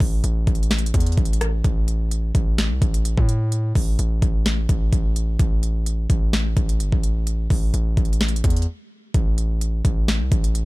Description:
hip hop, trap; 128 BPM; 4/4; half-time; A minor; A4 = 440 Hz
hard-hitting 808-style bass; bass; 0.0-10.7 s; G1 to A2; -21 LUFS; equal
trap drum kit; drums; 0.0-10.7 s; hi-hat, kick drum, rim click, snare drum; -20 LUFS; equal; overdrive
little or no reverb; -18 LUFS; side -21 dB against mid
0.0-9.1 A section; 9.1-10.7 A section
break 8.7-9.1

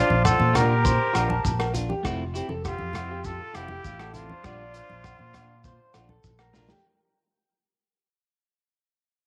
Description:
highlife guitar band; 100 BPM; 4/4; straight; A4 = 440 Hz
trumpet with straight mute; melody; 0.0-6.2 s; F4 to Bb4; -31 LUFS; equal; slapback echo
clear trumpet; second line; 0.0-6.2 s; C4 to G4; -39 LUFS; equal
clean electric guitar; accompaniment; 0.0-6.7 s; G3 to F4; -37 LUFS; equal
electric guitar through a small old amp; arpeggios; 0.0-6.8 s; F4 to A5; -34 LUFS; equal; spring reverb, slapback echo
fingered electric bass; bass; 0.1-6.7 s; F1 to Bb2; -30 LUFS; equal
congas; percussion; 0.1-6.8 s; -35 LUFS; equal
agogo bells; percussion; 0.2-6.5 s; -36 LUFS; equal
crunchy breakbeat drum kit; drums; 0.3-6.8 s; hi-hat, kick drum, rim click, snare drum; -33 LUFS; equal
shekere; percussion; 0.3-6.7 s; -36 LUFS; equal
light reverb, small room reverb; -24 LUFS; mono
0.0-6.8 A section
fade-out 0.0-6.8; drum fill 6.5
0.0 Bb6; 2.0 Fmaj7; 4.4 Bb6

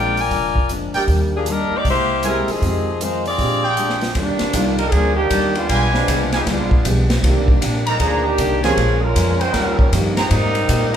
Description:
jazz, big band swing; 156 BPM; 4/4; swing 64% on 8ths; Eb major; A4 = 438 Hz
clear saxophone section; melody; 0.0-4.0 s; F3 to Ab5; -20 LUFS; left 2 dB
picked steel-string acoustic guitar; accompaniment; 0.0-11.0 s; F2 to Bb4; -26 LUFS; left 2 dB
warm grand piano; accompaniment; 0.0-10.2 s; Eb3 to G4; -26 LUFS; right 2 dB
upright bass; bass; 0.0-11.0 s; F1 to Bb2; -21 LUFS; equal
swinging big-band drum kit; drums; 0.2-11.0 s; hi-hat, kick drum, ride cymbal, snare drum; -21 LUFS; equal
clear trumpet section; stabs; 0.9-11.0 s; D4 to Bb5; -23 LUFS; right 2 dB
clear trombone section; second line; 4.1-11.0 s; Eb3 to C5; -20 LUFS; right 1 dB
moderate large studio reverb, RT60 1.3 s; band playing live in one room; -15 LUFS; side -9 dB against mid
0.0-4.2 A section; 4.2-11.0 B section
trombone section solo 4.2-11.0
0.0 Bb7; 1.1 Ebmaj7; 1.9 C7b13; 2.6 Fm7; 3.4 Bb13; 4.2 Ebmaj7; 5.7 G7b9; 7.2 Cm9; 8.8 Bbm7; 9.5 Eb9; 10.3 Abmaj9

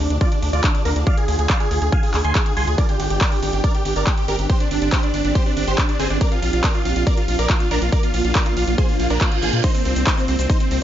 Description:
uplifting trance; 140 BPM; 4/4; straight; A4 = 441 Hz
big supersaw lead; melody; 0.0-10.8 s; C4 to C6; -23 LUFS; right 1 dB; sidechain pumping, tape echo
shimmering ambient pad; sustained chords; 0.0-10.8 s; C3 to Ab4; -28 LUFS; right 1 dB; chorus, built-in reverb, sidechain pumping
gritty driven synth bass; bass; 0.0-10.8 s; G1 to Bb2; -22 LUFS; equal; sidechain pumping
big-room dance drum kit; drums; 0.0-10.8 s; crash cymbal, handclaps, hi-hat, ride cymbal; -26 LUFS; equal; overdrive, sidechain pumping on hats, sidechain pumping on cymbals
electronic kick drum; drums; 0.2-10.6 s; -19 LUFS; equal; overdrive
reverse cymbal; sound effects; 9.0-9.6 s; -28 LUFS; right 7 dB
egg shaker; percussion; 9.6-10.7 s; -36 LUFS; left 3 dB
little or no reverb; nothing above 7.5 kHz; -16 LUFS; side -11 dB against mid
0.0-10.8 A section
reverse cymbal 9.0-9.6
0.0 Ddim; 2.8 Gsus4; 6.2 Bb; 9.6 Cm

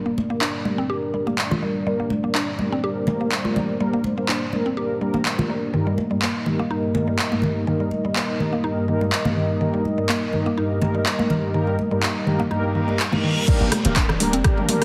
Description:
afro house; 124 BPM; 4/4; swing 54% on 16ths; G minor; A4 = 440 Hz
dark analog pad; sustained chords; 0.0-14.8 s; G3 to Eb5; -30 LUFS; equal; chorus, sidechain pumping
mellow synth brass; stabs; 0.0-14.8 s; G2 to Bb4; -28 LUFS; equal; chorus, sidechain pumping, digital delay
mallet-like synth pluck; arpeggios; 0.1-14.8 s; Eb3 to G4; -28 LUFS; equal; chorus, phaser, cassette tape, sidechain pumping, digital delay
congas; percussion; 0.2-14.8 s; -30 LUFS; equal
deep house drum kit; drums; 0.4-14.8 s; crash cymbal, handclaps, hi-hat, rim click, toms; -28 LUFS; equal; overdrive
reverse cymbal and downlifter; sound effects; 12.7-14.8 s; -33 LUFS; equal
electronic kick drum; drums; 13.5-14.6 s; -22 LUFS; equal
warm 808-style bass; bass; 13.6-14.4 s; D1 to G1; -28 LUFS; equal; sidechain pumping
moderate lush hall reverb, RT60 1.5 s, digital ambience; heavily compressed radio sound, multiband compression; -22 LUFS; mono
0.0-13.5 A section; 13.5-14.8 B section
filter sweep on synth pluck 0.0-13.5; filter sweep on analog polysynth 0.0-13.5; reverse cymbal 12.7-13.5; drop 13.5-14.8
0.0 Gm; 5.7 Eb/G; 13.5 Gm

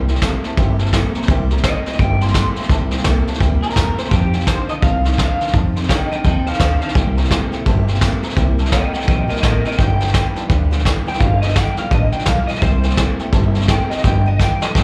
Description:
rockabilly; 169 BPM; 4/4; swing 61% on 8ths; C mixolydian; A4 = 439 Hz
picked steel-string acoustic guitar; accompaniment; 0.0-14.8 s; G2 to A4; -31 LUFS; equal
electric guitar through a small old amp; riff; 0.0-14.8 s; F2 to A3; -28 LUFS; equal
upright bass; bass; 0.0-14.8 s; G1 to F2; -20 LUFS; equal
dark upright piano; accompaniment; 0.1-14.8 s; B4 to C6; -35 LUFS; equal
vintage brush drum kit; drums; 0.1-14.8 s; hi-hat, kick drum, snare drum; -21 LUFS; equal
electric guitar through a small old amp; melody; 1.6-14.8 s; G4 to C6; -26 LUFS; equal; analog chorus, slapback echo, tape echo
small room ambience; live gig heard through the venue's PA, club reverb; -17 LUFS; mono
0.0-14.8 A section
drum fill 14.0-14.8
0.0 C7; 4.1 F7; 7.0 C7; 9.8 G7; 12.6 C7; 14.0 G7

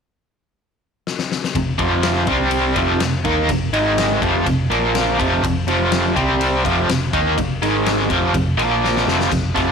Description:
classic rock; 124 BPM; 4/4; straight; A4 = 440 Hz
huge arena drum kit; drums; 1.1-9.7 s; kick drum, ride cymbal, snare drum, splash cymbal; -24 LUFS; left 5 dB
picked electric bass; bass; 1.5-9.7 s; F1 to Eb2; -24 LUFS; right 1 dB
crunchy overdriven guitar; riff; 1.6-9.7 s; F2 to Eb4; -17 LUFS; equal; harmonic tremolo
light reverb, studio ambience; 1960s-style stereo; -16 LUFS; side -6 dB against mid
0.0-1.6 A section; 1.6-9.7 B section
drum fill 1.1-1.6, 8.8-9.3
0.0 N.C.; 1.6 F5; 2.3 C5; 2.8 F5; 3.7 Ab5; 4.2 F5; 4.7 Bb5; 5.2 F5; 6.2 C5; 6.6 F5; 7.6 Ab5; 8.1 F5; 8.6 Bb5; 9.1 F5

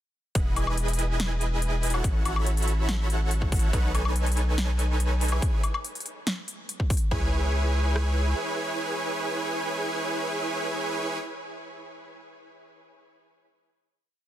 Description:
future bass; 142 BPM; 4/4; half-time; C# minor; A4 = 436 Hz
dense compressed supersaw; riff; 0.4-11.2 s; D#4 to B5; -30 LUFS; right 1 dB; sidechain pumping, tape echo
saturated sub bass; bass; 0.4-8.3 s; E1 to C#2; -25 LUFS; equal; sidechain pumping
big-room dance drum kit; drums; 0.4-8.1 s; kick drum, rim click; -26 LUFS; equal; overdrive
big-room dance drum kit; drums; 0.4-7.1 s; hi-hat, snare drum, woodblock; -32 LUFS; left 2 dB; overdrive
digital ambience; dense, heavily limited modern master; -24 LUFS; side -12 dB against mid
0.4-7.1 drop; 7.1-10.5 final chord
drop 0.4-7.1
0.4 Emaj9; 2.0 A6; 3.7 B9; 5.4 C#m7

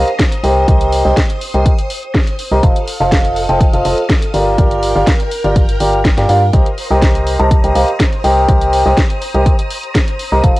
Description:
piano house; 123 BPM; 4/4; straight; C dorian; A4 = 445 Hz
string machine, violins; sustained chords; 0.0-10.6 s; A4 to F6; -25 LUFS; equal; ensemble chorus, sidechain pumping, cassette tape
clear concert grand piano; riff; 0.0-10.6 s; F4 to Bb5; -14 LUFS; equal; sidechain pumping, low-pass filter, cassette tape, tape echo
organ-like FM bass; bass; 0.0-10.5 s; F1 to G2; -16 LUFS; equal; sidechain pumping
house drum kit; drums; 0.1-10.6 s; hi-hat, snare drum; -21 LUFS; equal; overdrive, cassette tape
electronic kick drum; drums; 0.2-10.5 s; -13 LUFS; equal; overdrive, cassette tape
light reverb; home recording on cassette; -11 LUFS; side -18 dB against mid
0.0-10.6 A section
0.0 Cm7; 2.6 F7; 4.3 Gm7; 6.5 Cm7

